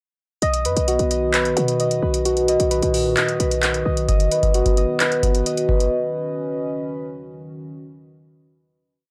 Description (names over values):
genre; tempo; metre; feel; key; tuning
hip hop, trap; 131 BPM; 4/4; half-time; B major; A4 = 440 Hz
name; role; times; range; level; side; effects
dark analog pad; sustained chords; 0.4-7.7 s; A#2 to F#4; -31 LUFS; equal; chorus
muted felt-like synth keys; arpeggios; 0.4-7.1 s; F#4 to D#5; -23 LUFS; equal; chorus, phaser, analog delay
short 808-style bass; bass; 0.4-4.1 s; B1 to B2; -26 LUFS; equal; none
booming analog drum machine; drums; 0.4-5.9 s; handclaps, hi-hat, kick drum; -23 LUFS; equal; overdrive
room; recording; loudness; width
digital ambience; dry, gritty hardware recording; -20 LUFS; mono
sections
0.4-7.8 verse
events
none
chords
0.4 B